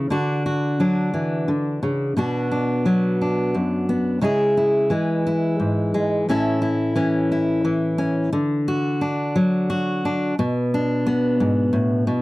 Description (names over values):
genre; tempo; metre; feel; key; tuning
folk; 58 BPM (dotted quarters); 6/8; straight; unclear; A4 = 438 Hz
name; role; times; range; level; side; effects
fingerpicked steel-string acoustic guitar; solo; 0.0-12.2 s; F#2 to A4; -19 LUFS; equal; none
room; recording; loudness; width
light reverb; dry, close 1970s-style studio recording; -19 LUFS; side -20 dB against mid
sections
0.1-8.3 A section; 8.3-12.2 B section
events
build-up 8.3-12.2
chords
0.1 D; 2.2 Bm; 4.2 C#m; 6.3 A; 8.3 D; 10.4 Bm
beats
| 0.11 1.14 | 2.17 3.19 | 4.22 5.25 | 6.27 7.30 | 8.32 9.35 | 10.37 11.39